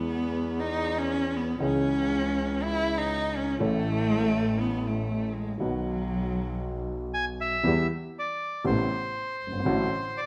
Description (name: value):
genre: tango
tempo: 120 BPM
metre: 4/4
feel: rubato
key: unclear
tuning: A4 = 440 Hz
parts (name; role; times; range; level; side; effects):
- warm cello; second line; 0.0-7.1 s; F#3 to E4; -30 LUFS; equal; none
- dark upright piano; accompaniment; 0.0-9.9 s; F#1 to A4; -33 LUFS; equal; none
- clear double bass; bass; 0.0-9.9 s; G1 to E2; -35 LUFS; equal; none
- bandoneon; melody; 7.1-10.3 s; C5 to G#5; -32 LUFS; equal; none
room: moderate large studio reverb, RT60 1.2 s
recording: none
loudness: -28 LUFS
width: mono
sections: 0.0-7.6 A section; 7.6-10.3 B section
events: cello solo 0.0-7.6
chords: 0.0 E; 1.6 C#m; 3.6 A; 5.6 B; 7.6 Em; 8.7 Amadd9; 9.7 D/A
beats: 0.10 0.60 1.11 | 1.61 2.12 2.62 3.12 | 3.62 4.12 4.62 5.12 | 5.61 6.11 6.62 7.13 | 7.64 8.14 8.65 9.15 | 9.65 10.15